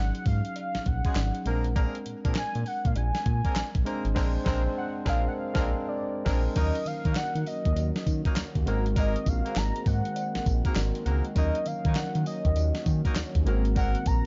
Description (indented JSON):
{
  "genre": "R&B, new jack swing",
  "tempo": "100 BPM",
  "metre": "4/4",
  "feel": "swing 64% on 16ths",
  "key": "Eb dorian",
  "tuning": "A4 = 440 Hz",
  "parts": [
    { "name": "warm velvety synth lead", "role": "melody", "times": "0.0-14.3 s", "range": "D5 to Bb5", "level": "-37 LUFS", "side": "equal", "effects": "chorus, delay" },
    { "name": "tine electric piano", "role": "accompaniment", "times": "0.0-14.3 s", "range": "Gb3 to C5", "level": "-37 LUFS", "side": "equal", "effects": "none" },
    { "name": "smooth synth bass", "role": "bass", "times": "0.0-14.2 s", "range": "Ab1 to Eb3", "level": "-30 LUFS", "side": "equal", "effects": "none" },
    { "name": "crisp 8-bit digital drum machine", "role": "drums", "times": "0.1-14.2 s", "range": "crash cymbal, handclaps, hi-hat, kick drum, snare drum, tambourine", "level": "-31 LUFS", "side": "equal", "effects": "none" },
    { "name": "cowbell", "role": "percussion", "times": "0.6-13.9 s", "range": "none", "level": "-50 LUFS", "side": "equal", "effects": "none" },
    { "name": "warm horn section", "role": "stabs", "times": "1.1-14.0 s", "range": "Ab3 to Bb4", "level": "-41 LUFS", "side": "equal", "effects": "none" },
    { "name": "sweeping resonant pad", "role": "sustained chords", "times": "6.6-14.3 s", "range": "Eb3 to Gb4", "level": "-40 LUFS", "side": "equal", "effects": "chorus, phaser" }
  ],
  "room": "little or no reverb",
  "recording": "dark, warm production, nothing above 7.6 kHz",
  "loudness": "-27 LUFS",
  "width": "mono",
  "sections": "0.0-6.6 A section; 6.6-14.3 B section",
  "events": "drums muted 4.2-6.6; band accent 4.2-6.6",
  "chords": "0.0 Ab7sus4; 1.5 Bb9; 6.6 Ebm7; 8.7 Ab9; 11.4 Ebm7; 13.5 Ab9"
}